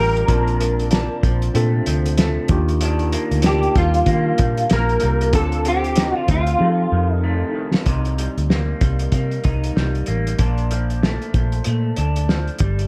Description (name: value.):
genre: indie pop, bedroom pop.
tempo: 95 BPM.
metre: 4/4.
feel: swing 60% on 16ths.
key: Bb major.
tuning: A4 = 440 Hz.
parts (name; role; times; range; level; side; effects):
electric guitar through a small old amp; melody; 0.0-7.5 s; F4 to Bb4; -24 LUFS; equal; ensemble chorus, plate reverb, digital delay.
electric guitar through a small old amp; accompaniment; 0.0-12.9 s; F2 to F4; -29 LUFS; equal; lush chorus, vibrato effect.
tine electric piano; accompaniment; 0.0-7.9 s; Bb3 to A5; -28 LUFS; equal; cassette tape, plate reverb.
vintage muted fingered electric bass; bass; 0.0-12.9 s; G1 to F3; -22 LUFS; equal; none.
cloth-damped thuddy drum kit; drums; 0.2-12.9 s; hi-hat, kick drum, snare drum; -23 LUFS; equal; none.
room: light reverb.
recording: none.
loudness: -19 LUFS.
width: mono.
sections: 0.0-7.9 A section; 7.9-12.9 B section.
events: drum fill 6.6-7.9.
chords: 0.3 Bbmaj7; 2.5 Ebmaj7; 5.3 Dm7; 6.6 F7; 7.9 Cm7; 10.4 Bbmaj7.